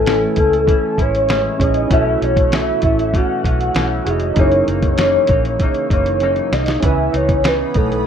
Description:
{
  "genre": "indie pop, bedroom pop",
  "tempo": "98 BPM",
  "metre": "4/4",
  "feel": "straight",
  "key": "C# minor",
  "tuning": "A4 = 435 Hz",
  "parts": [
    { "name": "soft octave-layered synth lead", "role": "melody", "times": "0.0-8.1 s", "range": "A4 to F#5", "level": "-17 LUFS", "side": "left 1 dB", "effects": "phaser, ensemble chorus" },
    { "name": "semi-hollow electric guitar", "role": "accompaniment", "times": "0.0-8.1 s", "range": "F#2 to E4", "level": "-24 LUFS", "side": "left 4 dB", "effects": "analog chorus, vibrato effect" },
    { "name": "warm analog keys", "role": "accompaniment", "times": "0.0-8.1 s", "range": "C#4 to G#5", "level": "-23 LUFS", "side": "right 6 dB", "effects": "chorus, cassette tape" },
    { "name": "vintage muted fingered electric bass", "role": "bass", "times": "0.0-8.1 s", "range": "E#1 to C#2", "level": "-22 LUFS", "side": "equal", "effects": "none" },
    { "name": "lo-fi sampler-style drum kit", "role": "drums", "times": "0.1-8.1 s", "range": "hi-hat, kick drum, snare drum", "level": "-18 LUFS", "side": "equal", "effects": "none" },
    { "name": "ethereal airy pad", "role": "sustained chords", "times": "7.2-8.1 s", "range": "C#5 to D#6", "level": "-29 LUFS", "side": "equal", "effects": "ensemble chorus, built-in reverb" }
  ],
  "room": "moderate studio reverb, RT60 0.6 s",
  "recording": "rough home demo mix",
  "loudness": "-13 LUFS",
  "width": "side -8 dB against mid",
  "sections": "0.0-6.8 A section; 6.8-8.1 A section",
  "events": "drum fill 6.2-6.8",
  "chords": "0.0 Amaj7; 1.9 B9sus4; 4.4 F#13; 6.8 C#m9"
}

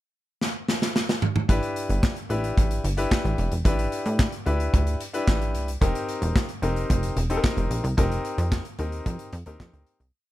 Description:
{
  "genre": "early-eighties boogie funk",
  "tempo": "111 BPM",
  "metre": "4/4",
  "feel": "straight",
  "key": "A minor",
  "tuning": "A4 = 440 Hz",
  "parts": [
    { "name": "modern studio drum kit", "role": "drums", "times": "0.4-10.1 s", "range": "handclaps, hi-hat, kick drum, snare drum, toms", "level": "-25 LUFS", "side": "equal", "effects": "none" },
    { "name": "bright grand piano", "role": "accompaniment", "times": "1.5-10.0 s", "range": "C4 to B4", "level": "-29 LUFS", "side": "left 2 dB", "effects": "none" },
    { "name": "plucky analog bass", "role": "bass", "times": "1.5-10.1 s", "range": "E1 to A2", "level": "-25 LUFS", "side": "equal", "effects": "none" }
  ],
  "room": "little or no reverb",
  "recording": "none",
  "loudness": "-22 LUFS",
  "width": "side -15 dB against mid",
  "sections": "0.0-1.5 pickup bar; 1.5-10.1 verse",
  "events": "drum fill 0.4-1.5; fade-out 8.0-10.1",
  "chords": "0.0 N.C.; 1.5 A9sus4; 5.8 F9sus4"
}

